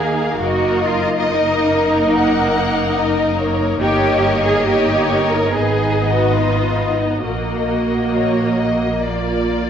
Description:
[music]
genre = classical, slow romantic movement for string orchestra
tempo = 60-73 BPM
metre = 4/4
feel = rubato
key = Eb minor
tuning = A4 = 440 Hz
[part]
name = warm symphonic violin section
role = melody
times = 0.0-9.7 s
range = Bb4 to Eb5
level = -23 LUFS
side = left 6 dB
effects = none
[part]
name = warm symphonic violin section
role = second line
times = 0.0-9.7 s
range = Bb4 to Gb5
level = -22 LUFS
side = left 2 dB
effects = none
[part]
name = rich symphonic viola section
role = accompaniment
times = 0.0-9.7 s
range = Bb3 to Gb4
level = -20 LUFS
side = equal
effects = none
[part]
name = rich symphonic double bass section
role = bass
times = 0.0-9.7 s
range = Gb1 to Eb2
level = -23 LUFS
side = right 3 dB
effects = none
[part]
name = warm symphonic cello section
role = bass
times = 0.0-9.7 s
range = Bb3 to Bb4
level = -20 LUFS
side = right 2 dB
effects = none
[sound]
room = moderate scoring stage reverb, RT60 2.1 s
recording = worn, warbling old tape, cassette tape, warbly pitch drift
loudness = -14 LUFS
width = side -8 dB against mid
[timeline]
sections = 0.0-9.7 A section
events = none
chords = 0.4 Ebm/Gb; 3.8 Eb7/G; 5.5 Abm; 7.2 Ebm/Bb; 9.1 Bb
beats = | 0.41 1.29 2.14 2.98 | 3.82 4.68 5.52 6.36 | 7.25 8.15 9.05

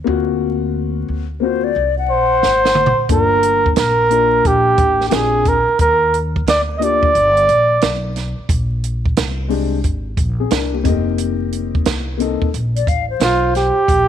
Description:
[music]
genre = hip hop, jazz-hop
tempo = 89 BPM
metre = 4/4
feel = swing 66% on 16ths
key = unclear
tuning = A4 = 441 Hz
[part]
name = dark upright piano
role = accompaniment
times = 0.0-12.5 s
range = Ab3 to Bb4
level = -20 LUFS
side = left 11 dB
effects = none
[part]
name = upright bass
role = bass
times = 0.0-14.1 s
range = F1 to Eb2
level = -22 LUFS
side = equal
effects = none
[part]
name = mellow hollow silver concert flute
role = second line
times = 1.4-2.9, 12.8-13.8 s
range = C5 to F#5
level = -20 LUFS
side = left 10 dB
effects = none
[part]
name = warm flugelhorn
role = melody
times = 2.1-8.2, 13.2-14.1 s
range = F4 to Eb5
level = -14 LUFS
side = right 2 dB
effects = none
[part]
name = compact cocktail drum kit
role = drums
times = 2.4-14.1 s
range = hi-hat, kick drum, snare drum, toms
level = -19 LUFS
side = right 2 dB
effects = none
[sound]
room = light reverb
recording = 1960s-style stereo, vinyl crackle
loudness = -14 LUFS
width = side -9 dB against mid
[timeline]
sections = 0.0-13.9 A section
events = drum fill 2.4-3.1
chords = 0.1 D7alt; 3.1 Gm7; 5.1 Bb9; 5.8 Ebmaj7; 8.5 Bb13; 10.8 F9sus4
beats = | 0.40 1.07 1.75 2.42 | 3.10 3.77 4.44 5.12 | 5.79 6.46 7.14 7.81 | 8.49 9.16 9.84 10.51 | 11.19 11.86 12.53 13.21 | 13.88

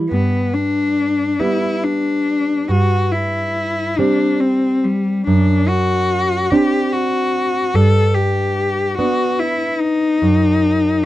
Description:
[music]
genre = romantic duo for cello and classical guitar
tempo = 48 BPM (dotted quarters)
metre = 6/8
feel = rubato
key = G major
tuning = A4 = 441 Hz
[part]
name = nylon-string guitar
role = accompaniment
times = 0.0-11.1 s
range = F#2 to E4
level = -18 LUFS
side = right 2 dB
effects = none
[part]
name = rich cello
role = melody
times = 0.1-11.1 s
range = G3 to A4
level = -17 LUFS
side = left 2 dB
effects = none
[sound]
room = little or no reverb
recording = dry, close 1970s-style studio recording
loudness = -14 LUFS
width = side -15 dB against mid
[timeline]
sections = 0.1-11.1 A section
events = none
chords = 0.1 G; 2.7 C/G; 5.3 D7/F#; 7.7 G; 10.2 B/F# (rootless)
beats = | 0.11 1.39 | 2.70 3.98 | 5.27 6.51 | 7.74 8.98 | 10.22

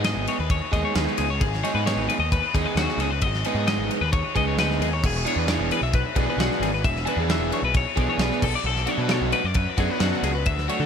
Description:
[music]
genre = math rock and midwest emo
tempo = 132 BPM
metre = 4/4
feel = straight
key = unclear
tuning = A4 = 440 Hz
[part]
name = twelve-string electric guitar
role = arpeggios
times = 0.0-10.9 s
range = F#4 to E5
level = -27 LUFS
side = left 7 dB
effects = dub echo
[part]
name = overdriven electric guitar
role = riff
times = 0.0-10.9 s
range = E3 to G#4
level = -27 LUFS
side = right 2 dB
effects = dub echo
[part]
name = fuzz picked electric bass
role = bass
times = 0.0-10.9 s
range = E1 to D3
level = -27 LUFS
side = equal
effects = overdrive
[part]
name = modern studio drum kit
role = drums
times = 0.0-10.8 s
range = crash cymbal, kick drum, ride cymbal, snare drum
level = -26 LUFS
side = equal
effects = dub echo
[sound]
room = little or no reverb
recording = echo-heavy mix, faint mains hum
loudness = -21 LUFS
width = side -7 dB against mid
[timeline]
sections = 0.0-10.9 A section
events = none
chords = 0.0 G#m; 5.0 E9; 8.4 Bm7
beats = 0.05 0.50 0.96 | 1.41 1.86 2.31 2.77 | 3.22 3.67 4.13 4.58 | 5.03 5.49 5.94 6.39 | 6.84 7.30 7.75 8.20 | 8.66 9.11 9.56 10.02 | 10.47

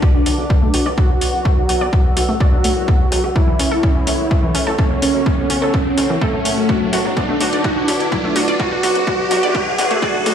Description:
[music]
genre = melodic techno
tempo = 126 BPM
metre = 4/4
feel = straight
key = B minor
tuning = A4 = 440 Hz
[part]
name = fat analog lead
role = melody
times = 0.0-10.3 s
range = A3 to F#4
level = -20 LUFS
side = equal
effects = ensemble chorus, vintage 12-bit sampler grit, sidechain pumping, ping-pong delay
[part]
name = dark analog pad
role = sustained chords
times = 0.0-10.3 s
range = A4 to E6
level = -27 LUFS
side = right 1 dB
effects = chorus, sidechain pumping
[part]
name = wide unison pluck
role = arpeggios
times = 0.0-10.3 s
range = C#3 to D5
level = -22 LUFS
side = right 1 dB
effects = sidechain pumping, dub echo
[part]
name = electronic kick drum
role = drums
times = 0.0-10.1 s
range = none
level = -17 LUFS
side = equal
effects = none
[part]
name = riser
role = sound effects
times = 0.0-10.3 s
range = none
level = -24 LUFS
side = equal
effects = none
[part]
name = fat analog bass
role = bass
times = 0.1-10.3 s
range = E1 to F#2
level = -30 LUFS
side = equal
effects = none
[part]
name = techno drum kit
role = drums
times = 0.3-10.3 s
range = hi-hat, toms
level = -25 LUFS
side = left 1 dB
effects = high-pass filter on hats, high-pass filter on snare, high-pass filter on toms, high-pass filter on room
[sound]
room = light reverb, digital ambience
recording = played on a big sound system in a bare room, stone room reverb, high-pass filter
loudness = -14 LUFS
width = side -8 dB against mid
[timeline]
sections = 0.0-10.3 A section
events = build-up 0.0-10.3; drum fill 0.0-10.3; riser 0.0-10.3; filter sweep on synth pluck 0.0-10.3; filter sweep 0.0-10.3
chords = 0.0 Bm; 3.4 F#m; 7.2 Bm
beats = 0.03 0.50 0.98 | 1.45 1.93 2.40 2.88 | 3.36 3.83 4.31 4.79 | 5.26 5.74 6.21 6.69 | 7.17 7.64 8.12 8.60 | 9.07 9.55 10.03

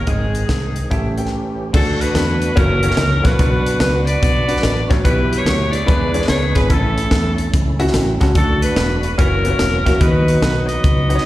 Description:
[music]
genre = uptempo gospel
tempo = 145 BPM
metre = 4/4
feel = swing 64% on 8ths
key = D major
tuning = A4 = 440 Hz
[part]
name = edgy saxophone section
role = melody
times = 0.0-11.3 s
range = C4 to D#5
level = -21 LUFS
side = left 1 dB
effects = plate reverb, slapback echo
[part]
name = warm tenor saxophone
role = melody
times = 0.0-0.9 s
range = Ab3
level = -29 LUFS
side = right 3 dB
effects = plate reverb, slapback echo
[part]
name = percussive tonewheel organ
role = sustained chords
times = 0.0-11.3 s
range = D3 to B4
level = -26 LUFS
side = right 3 dB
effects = slow rotary speaker, chorus vibrato
[part]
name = fingered electric bass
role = bass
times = 0.0-11.2 s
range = E1 to E2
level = -19 LUFS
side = equal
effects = none
[part]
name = warm upright piano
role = accompaniment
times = 0.1-11.3 s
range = Ab2 to A5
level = -21 LUFS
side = left 1 dB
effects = plate reverb, slapback echo
[part]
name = crisp fusion drum kit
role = drums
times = 0.1-11.2 s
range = crash cymbal, hi-hat, kick drum, snare drum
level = -18 LUFS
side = equal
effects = none
[sound]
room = light reverb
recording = live gig heard through the venue's PA, recital hall reverb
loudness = -14 LUFS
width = side -16 dB against mid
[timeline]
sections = 0.0-1.7 A section; 1.7-11.3 B section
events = break 1.3-1.7; upright piano fill 7.5-8.4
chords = 0.1 Ab; 0.9 A7; 1.7 D; 2.6 F#7b13; 3.4 Bm; 5.0 Em/B; 5.9 E7; 6.7 A; 8.4 D; 9.2 F#7; 10.0 B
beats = | 0.07 0.49 0.91 1.32 | 1.74 2.15 2.56 2.98 | 3.39 3.81 4.22 4.63 | 5.05 5.46 5.88 6.29 | 6.70 7.12 7.53 7.94 | 8.36 8.77 9.18 9.60 | 10.01 10.42 10.84 11.25

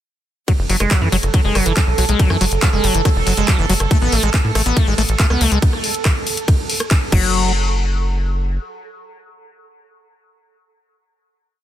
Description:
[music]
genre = psychedelic trance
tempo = 140 BPM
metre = 4/4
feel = straight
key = unclear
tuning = A4 = 438 Hz
[part]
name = bubbling stepped-filter texture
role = sustained chords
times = 0.9-7.1 s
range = A4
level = -26 LUFS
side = right 9 dB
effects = chorus, built-in reverb, sidechain pumping
[part]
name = liquid acid bass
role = riff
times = 0.5-7.5 s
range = E3 to B3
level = -21 LUFS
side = left 2 dB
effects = chorus, auto-pan, sidechain pumping, dub echo
[part]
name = drum and bass drum kit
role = drums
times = 0.5-7.2 s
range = crash cymbal, handclaps, hi-hat, ride cymbal, rim click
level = -22 LUFS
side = left 1 dB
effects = overdrive
[part]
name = electronic kick drum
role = drums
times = 0.5-7.2 s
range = none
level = -17 LUFS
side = equal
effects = none
[part]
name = tight sequencer bass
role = bass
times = 0.6-8.6 s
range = E1 to A2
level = -18 LUFS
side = equal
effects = none
[sound]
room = digital ambience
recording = dense, heavily limited modern master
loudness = -14 LUFS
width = side -12 dB against mid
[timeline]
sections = 0.5-7.3 drop; 7.3-10.8 final hit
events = drop 0.5-7.3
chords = 0.5 Esus24; 3.9 N.C.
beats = | 0.48 0.91 1.34 1.77 | 2.19 2.62 3.05 3.48 | 3.91 4.34 4.77 5.20 | 5.62 6.05 6.48 6.91 | 7.34 7.77 8.20

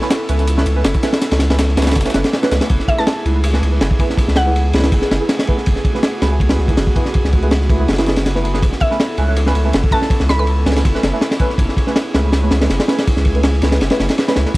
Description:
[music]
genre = drum and bass, jungle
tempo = 162 BPM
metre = 4/4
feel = swing 53% on 16ths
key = F# minor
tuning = A4 = 440 Hz
[part]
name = airy breathy pad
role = sustained chords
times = 0.0-14.6 s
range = A3 to A4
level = -24 LUFS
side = right 1 dB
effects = chorus
[part]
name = deep mellow chord stab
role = stabs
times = 0.0-14.5 s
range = A3 to B4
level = -23 LUFS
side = right 2 dB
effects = chorus, phaser, dub echo
[part]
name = breakbeat sampler-style drum kit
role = drums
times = 0.0-2.6, 14.6 s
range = hi-hat, snare drum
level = -27 LUFS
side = equal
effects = high-pass filter on snare, high-pass filter on hats, high-pass filter on room
[part]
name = crunchy breakbeat drum kit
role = drums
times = 0.0-14.6 s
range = kick drum, ride cymbal, snare drum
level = -16 LUFS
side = equal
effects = none
[part]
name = saturated sub bass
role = bass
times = 0.3-14.6 s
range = F#1 to C#2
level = -16 LUFS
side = equal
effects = none
[part]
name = mallet-like synth pluck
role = melody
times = 2.9-4.7, 8.8-10.4 s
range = E5 to B5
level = -23 LUFS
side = equal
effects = chorus, cassette tape, dub echo
[sound]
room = small room ambience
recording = dry, gritty hardware recording, vinyl crackle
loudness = -13 LUFS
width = side -20 dB against mid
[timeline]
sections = 0.0-2.7 A section; 2.7-14.6 A section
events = drop 0.0-2.7, 2.7-14.6; kick drops out 13.8-14.6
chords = 0.0 Aadd9; 2.7 F#m11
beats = 0.11 0.48 0.85 | 1.22 1.59 1.96 2.33 | 2.70 3.07 3.44 3.81 | 4.18 4.55 4.92 5.29 | 5.66 6.03 6.40 6.77 | 7.14 7.51 7.88 8.25 | 8.62 8.99 9.37 9.74 | 10.11 10.48 10.85 11.22 | 11.59 11.96 12.33 12.70 | 13.07 13.44 13.81 14.18 | 14.55

